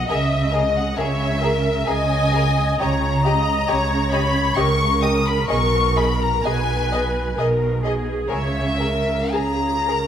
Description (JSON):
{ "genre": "classical, slow romantic movement for string orchestra", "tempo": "66 BPM", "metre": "3/4", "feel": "uneven beats, rubato", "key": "G# minor", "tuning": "A4 = 440 Hz", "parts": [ { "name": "rich studio violin section", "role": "melody", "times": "0.0-10.1 s", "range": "D#5 to D#6", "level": "-23 LUFS", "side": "left 4 dB", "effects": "none" }, { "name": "rich studio viola section", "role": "accompaniment", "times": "0.0-10.1 s", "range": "G#4 to D#5", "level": "-24 LUFS", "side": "equal", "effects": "none" }, { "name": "rich studio violin section", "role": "second line", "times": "0.1-10.0 s", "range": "G4 to D#5", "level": "-28 LUFS", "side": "left 3 dB", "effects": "none" }, { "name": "rich studio cello section", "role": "bass", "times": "0.1-10.1 s", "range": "B2 to C#3", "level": "-25 LUFS", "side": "right 2 dB", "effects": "none" }, { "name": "rich studio double bass section", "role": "bass", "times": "0.1-10.1 s", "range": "B1 to C#2", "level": "-24 LUFS", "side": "right 2 dB", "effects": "none" } ], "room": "moderate recital hall reverb, RT60 1.9 s", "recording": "none", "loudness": "-17 LUFS", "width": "side -9 dB against mid", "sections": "0.0-10.1 A section", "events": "none", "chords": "0.1 A#m7b5/C#; 5.5 G#m/B; 8.3 A#m7b5/C#" }